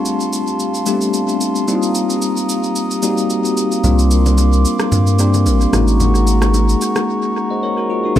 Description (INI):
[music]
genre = amapiano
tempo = 111 BPM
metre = 4/4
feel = swing 55% on 16ths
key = unclear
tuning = A4 = 440 Hz
[part]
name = bell-like tine electric piano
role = accompaniment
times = 0.0-8.2 s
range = G3 to Eb5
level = -17 LUFS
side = left 2 dB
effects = medium stereo tremolo, tape echo
[part]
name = glass harmonica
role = sustained chords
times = 0.0-8.2 s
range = G4 to Eb6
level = -22 LUFS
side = right 1 dB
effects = sidechain pumping
[part]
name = smooth R&B drum kit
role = drums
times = 0.1-8.2 s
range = kick drum, rim click, shaker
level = -24 LUFS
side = right 1 dB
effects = overdrive, tape echo
[part]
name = saturated sub bass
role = bass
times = 3.8-6.8 s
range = Ab1 to G2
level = -13 LUFS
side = equal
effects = none
[part]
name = congas and bongos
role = percussion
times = 3.8-8.2 s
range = none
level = -25 LUFS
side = right 2 dB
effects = none
[part]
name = analog pluck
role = stabs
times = 8.2 s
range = C4 to A4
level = -27 LUFS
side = left 2 dB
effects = none
[part]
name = tight log drum bass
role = bass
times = 8.2 s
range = G1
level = -14 LUFS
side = equal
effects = none
[sound]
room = light reverb, digital ambience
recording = echo-heavy mix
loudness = -13 LUFS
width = side -11 dB against mid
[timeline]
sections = 0.0-8.2 A section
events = break 7.1-8.2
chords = 0.0 G9sus4; 1.7 F9sus4; 3.8 C9sus4; 5.7 Ab9sus4